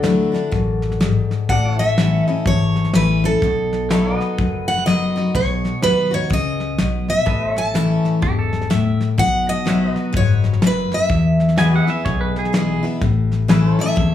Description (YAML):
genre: honky-tonk and classic country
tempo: 125 BPM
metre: 4/4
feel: swing 62% on 8ths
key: unclear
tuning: A4 = 439 Hz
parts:
  - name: picked steel-string acoustic guitar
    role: melody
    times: 0.0-14.1 s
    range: A4 to A5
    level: -21 LUFS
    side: right 1 dB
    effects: plate reverb
  - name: picked steel-string acoustic guitar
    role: accompaniment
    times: 0.0-14.1 s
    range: E2 to F#4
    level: -19 LUFS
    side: left 3 dB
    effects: none
  - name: pedal steel guitar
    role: sustained chords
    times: 0.0-14.1 s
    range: E4 to E5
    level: -29 LUFS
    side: left 1 dB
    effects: none
  - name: upright bass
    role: bass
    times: 0.0-14.1 s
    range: E1 to E2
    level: -23 LUFS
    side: equal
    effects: none
  - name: soft brush drum kit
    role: drums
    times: 0.0-14.1 s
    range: hi-hat, kick drum, snare drum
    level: -23 LUFS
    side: equal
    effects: none
  - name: pedal steel guitar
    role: second line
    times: 8.2-12.8 s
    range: G4 to G#5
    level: -24 LUFS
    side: right 2 dB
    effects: none
room: moderate booth ambience, RT60 0.2 s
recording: studio ambience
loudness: -15 LUFS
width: side -11 dB against mid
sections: 0.0-13.0 A section; 13.0-14.1 B section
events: steel-string acoustic guitar solo 13.0-14.1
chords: 0.0 Dadd9; 1.5 A; 3.4 B; 7.3 A; 9.2 B; 11.1 E; 13.0 A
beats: 0.05 0.53 1.01 | 1.49 1.98 2.46 2.94 | 3.42 3.90 4.38 4.86 | 5.34 5.83 6.31 6.79 | 7.27 7.75 8.23 8.71 | 9.19 9.67 10.14 10.62 | 11.10 11.58 12.06 12.54 | 13.02 13.49 13.97